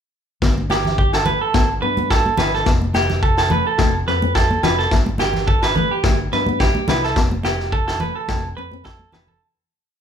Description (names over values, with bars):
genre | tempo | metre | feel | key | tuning
highlife guitar band | 107 BPM | 4/4 | swing 54% on 16ths | G mixolydian | A4 = 440 Hz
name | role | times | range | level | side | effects
nylon-string guitar | accompaniment | 0.4-9.2 s | A3 to F4 | -26 LUFS | left 9 dB | none
fingered electric bass | bass | 0.4-9.4 s | F1 to G2 | -25 LUFS | left 1 dB | none
vintage drum kit | drums | 0.4-9.3 s | kick drum, snare drum | -20 LUFS | equal | none
congas | percussion | 0.6-9.4 s | none | -25 LUFS | right 2 dB | none
clean electric guitar | arpeggios | 0.7-9.4 s | G4 to B4 | -20 LUFS | right 4 dB | none
agogo bells | percussion | 0.7-9.3 s | none | -29 LUFS | left 10 dB | none
room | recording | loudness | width
light reverb | band playing live in one room | -16 LUFS | side -8 dB against mid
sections
0.4-9.4 groove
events
fade-out 7.2-9.4; drum fill 8.7-9.4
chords
0.4 Gadd9; 2.7 F; 4.9 Gadd9; 7.2 F